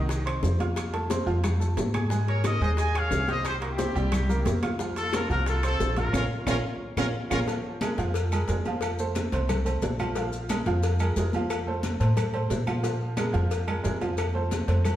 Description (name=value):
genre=latin, salsa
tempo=179 BPM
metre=4/4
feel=straight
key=Bb minor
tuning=A4 = 441 Hz
part: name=bright upright piano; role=accompaniment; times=0.0-15.0 s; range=Eb3 to Ab6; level=-31 LUFS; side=right 3 dB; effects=none
part: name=upright bass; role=bass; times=0.0-15.0 s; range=Bb1 to Bb2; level=-27 LUFS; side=equal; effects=none
part: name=bongos and cowbell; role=percussion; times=0.1-15.0 s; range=none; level=-36 LUFS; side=left 5 dB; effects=none
part: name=congas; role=percussion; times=0.1-15.0 s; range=none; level=-34 LUFS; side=left 1 dB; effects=none
part: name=maracas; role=percussion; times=0.1-15.0 s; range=none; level=-45 LUFS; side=left 4 dB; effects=none
part: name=timbales and agogo bells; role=percussion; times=0.1-15.0 s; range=none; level=-36 LUFS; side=right 3 dB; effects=none
part: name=claves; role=percussion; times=0.3-15.0 s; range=none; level=-43 LUFS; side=left 1 dB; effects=none
part: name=clear horn section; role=melody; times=2.3-7.4 s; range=Db4 to Ab5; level=-30 LUFS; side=left 1 dB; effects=none
room=wet large studio reverb, RT60 1.4 s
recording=heard from further back in the room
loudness=-24 LUFS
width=side -12 dB against mid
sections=0.0-7.5 A section; 7.5-15.0 B section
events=band accent 6.1-7.5; drum fill 6.5-7.5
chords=0.0 Cm; 0.8 F; 2.1 Absus2; 3.5 C7; 4.8 F; 6.1 Bbm; 7.5 Bb5; 8.8 F; 10.2 Bb5; 11.5 F; 12.8 Bb5; 14.2 F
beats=0.10 0.43 | 0.77 1.10 1.44 1.78 | 2.11 2.45 2.78 3.12 | 3.45 3.79 4.12 4.46 | 4.79 5.13 5.47 5.80 | 6.14 6.47 6.81 7.14 | 7.48 7.81 8.15 8.48 | 8.82 9.15 9.49 9.82 | 10.16 10.49 10.83 11.16 | 11.50 11.84 12.17 12.51 | 12.84 13.18 13.51 13.85 | 14.18 14.52 14.85